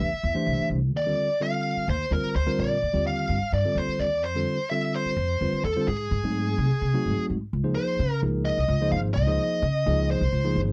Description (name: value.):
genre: electric jazz fusion.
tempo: 256 BPM (eighths).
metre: 7/8.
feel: straight.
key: Db major from 7.5 s.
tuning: A4 = 440 Hz.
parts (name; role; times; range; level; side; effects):
bluesy overdriven lead guitar; melody; 0.0-10.6 s; Ab4 to F5; -30 LUFS; equal; distortion, slapback echo.
tine electric piano; accompaniment; 0.0-10.7 s; D3 to Eb5; -31 LUFS; equal; none.
upright bass; bass; 0.0-10.7 s; Ab1 to Db3; -28 LUFS; equal; none.
room: light reverb.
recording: dry, close 1970s-style studio recording.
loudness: -25 LUFS.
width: mono.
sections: 0.0-7.5 A section; 7.5-10.7 B section.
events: none.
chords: 0.0 Cadd9; 0.9 Ebmaj9; 4.2 Fadd9; 5.9 Ab7b9; 7.5 Dbmaj9.